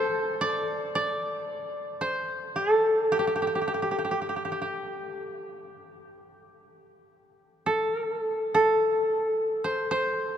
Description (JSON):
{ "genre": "japanese traditional, Japanese chamber music", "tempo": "51-58 BPM", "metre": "4/4", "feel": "rubato", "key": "unclear", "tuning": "A4 = 440 Hz", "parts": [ { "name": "koto", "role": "solo", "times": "0.0-10.4 s", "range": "G4 to D5", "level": "-25 LUFS", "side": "equal", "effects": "none" } ], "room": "moderate cathedral reverb, RT60 6.0 s", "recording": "minimal, uncompressed stereo recording", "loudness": "-25 LUFS", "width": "side -9 dB against mid", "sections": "0.0-10.4 A section", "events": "none", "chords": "none" }